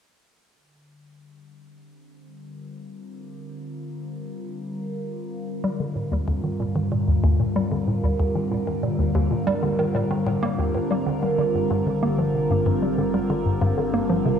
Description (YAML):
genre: ambient, sequencer-driven space music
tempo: 94 BPM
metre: 4/4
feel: straight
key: G minor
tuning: A4 = 440 Hz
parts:
  - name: evolving wavetable pad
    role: sustained chords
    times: 2.3-14.4 s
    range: G2 to Bb4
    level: -25 LUFS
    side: equal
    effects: chorus, built-in reverb, phaser
  - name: hollow square pluck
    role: riff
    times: 5.6-14.4 s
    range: Eb2 to Bb3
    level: -24 LUFS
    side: equal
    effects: chorus, phaser, tape echo
  - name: fat analog bass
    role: bass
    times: 10.7-14.4 s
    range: G1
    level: -42 LUFS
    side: equal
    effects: none
room: wet echo chamber reverb, RT60 2.3 s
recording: echo-heavy mix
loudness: -21 LUFS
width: side -8 dB against mid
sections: 0.5-10.7 A section; 10.7-14.4 B section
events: filter sweep on ambient pad 0.5-10.7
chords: 0.5 Gm; 5.6 Eb; 10.7 Gm